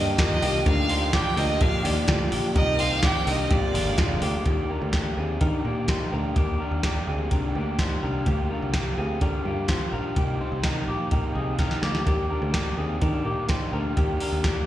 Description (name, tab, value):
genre	jangly indie pop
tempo	126 BPM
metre	4/4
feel	straight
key	Eb major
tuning	A4 = 437 Hz
part	clear violin	melody	0.0-4.2 s	D5 to G5	-27 LUFS	right 2 dB	slapback echo, digital delay
part	raw garage guitar	accompaniment	0.0-14.7 s	Bb2 to G4	-32 LUFS	right 4 dB	overdrive, slapback echo
part	lush unison pad	sustained chords	0.0-4.4 s	D3 to G4	-34 LUFS	left 1 dB	none
part	electric guitar through a small old amp	arpeggios	0.0-14.7 s	Ab3 to D5	-30 LUFS	left 4 dB	slapback echo, digital delay
part	picked electric bass	bass	0.0-14.6 s	F1 to Eb3	-28 LUFS	equal	none
part	soft vintage rhythm box	drums	0.2-14.6 s	hi-hat, kick drum, snare drum	-25 LUFS	equal	none
room	light reverb, digital ambience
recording	live gig heard through the venue's PA, recital hall reverb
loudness	-22 LUFS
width	side -13 dB against mid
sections	0.0-4.5 A section; 4.5-14.7 B section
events	drum fill 11.6-12.1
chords	0.0 Ebmaj7; 0.7 Gm7/D; 2.6 Cm7; 3.5 Bb7; 4.5 Ebmaj7; 8.3 Gm7; 10.2 Cm7; 12.1 Ebmaj7